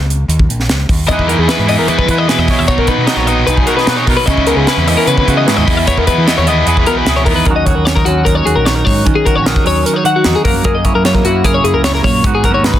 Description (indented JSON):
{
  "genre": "math rock and midwest emo",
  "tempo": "151 BPM",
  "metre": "4/4",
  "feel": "straight",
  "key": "unclear",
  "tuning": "A4 = 440 Hz",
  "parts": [
    { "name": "growling fingered electric bass", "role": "bass", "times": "0.0-12.7 s", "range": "A#1 to E3", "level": "-16 LUFS", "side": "equal", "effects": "overdrive" },
    { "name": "crisp fusion drum kit", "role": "drums", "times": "0.1-12.8 s", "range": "hi-hat, kick drum, snare drum", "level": "-16 LUFS", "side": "equal", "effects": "none" },
    { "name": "clean electric guitar", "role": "accompaniment", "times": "1.1-12.8 s", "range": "E2 to C#5", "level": "-17 LUFS", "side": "right 5 dB", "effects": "wide subtle chorus" },
    { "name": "twelve-string electric guitar", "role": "arpeggios", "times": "1.1-12.8 s", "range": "F#4 to F#5", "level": "-15 LUFS", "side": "left 5 dB", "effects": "digital delay" },
    { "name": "overdriven electric guitar", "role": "riff", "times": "1.1-7.5 s", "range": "B2 to E4", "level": "-16 LUFS", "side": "left 1 dB", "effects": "none" }
  ],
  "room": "light reverb",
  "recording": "dense, heavily limited modern master",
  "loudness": "-10 LUFS",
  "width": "side -11 dB against mid",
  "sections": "0.0-7.5 A section; 7.5-12.8 B section",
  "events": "none",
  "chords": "0.0 D#5; 1.1 Emaj7; 2.7 Bmaj9; 4.3 C#m11; 5.7 Emaj7; 7.5 D#m7; 10.5 F#9; 12.2 G#m9",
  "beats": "0.30 0.69 | 1.09 1.49 1.89 2.29 | 2.69 3.08 3.48 3.88 | 4.28 4.68 5.08 5.47 | 5.87 6.27 6.67 7.07 | 7.47 7.87 8.27 8.66 | 9.06 9.46 9.86 10.26 | 10.66 11.06 11.45 11.85 | 12.25 12.65"
}